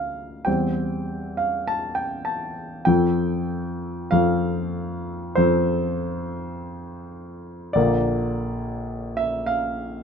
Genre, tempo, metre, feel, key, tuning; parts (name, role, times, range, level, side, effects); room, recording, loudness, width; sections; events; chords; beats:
classical, romantic nocturne for solo piano; 47-53 BPM; 4/4; rubato; A4 = 440 Hz
warm concert grand piano; solo; 0.0-10.0 s; Bb1 to A5; -22 LUFS; equal
light reverb; minimal, uncompressed stereo recording; -22 LUFS; side -6 dB against mid
0.0-10.0 A section
0.5 C/E; 2.9 F; 7.8 Bb
0.47 1.68 | 2.88 4.14 5.38 6.59 | 7.76 8.89